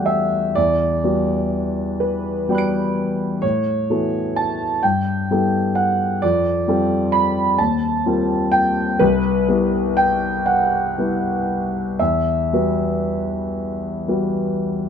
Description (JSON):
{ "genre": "classical, impressionist solo piano", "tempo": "37-44 BPM (dotted quarters)", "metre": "6/8", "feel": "rubato", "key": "unclear", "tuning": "A4 = 436 Hz", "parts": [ { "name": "clear concert grand piano", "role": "solo", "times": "0.0-14.9 s", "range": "C2 to D7", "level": "-17 LUFS", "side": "equal", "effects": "none" } ], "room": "light reverb", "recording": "close, detailed microphones", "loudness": "-17 LUFS", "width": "side -7 dB against mid", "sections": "0.0-14.9 A section", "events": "none", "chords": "0.0 Em11; 0.6 Gmaj7/E; 3.4 A69; 4.8 G69; 6.2 F69; 7.6 D#69; 9.0 Cmaj7; 12.0 Emadd9" }